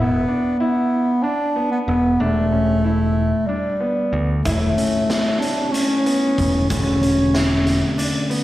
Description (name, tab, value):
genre	progressive instrumental, band music in an uneven meter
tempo	187 BPM (eighths)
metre	7/8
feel	straight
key	unclear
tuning	A4 = 438 Hz
part	mellow bass clarinet	melody	0.0-7.9 s	G3 to D4	-19 LUFS	equal	plate reverb, slapback echo
part	warm concert grand piano	arpeggios	0.0-8.4 s	D3 to E4	-27 LUFS	equal	plate reverb, slapback echo
part	modern bright picked electric bass	bass	0.0-7.8 s	E1 to D2	-21 LUFS	equal	none
part	mellow tonewheel organ	accompaniment	4.4-8.4 s	D3 to C#5	-25 LUFS	left 1 dB	chorus vibrato, stopped rotary speaker, plate reverb, slapback echo
part	raw garage drum kit	drums	4.5-8.4 s	hi-hat, kick drum, snare drum	-24 LUFS	equal	none
part	egg shaker	percussion	4.5-8.3 s	none	-43 LUFS	left 5 dB	none
room	moderate club reverb, RT60 0.8 s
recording	live gig heard through the venue's PA, recital hall reverb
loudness	-17 LUFS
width	side -15 dB against mid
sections	0.0-8.4 A section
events	none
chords	0.0 Dsus2/E; 2.2 Em7; 4.5 B9sus4/E; 6.7 Bm7/E (rootless)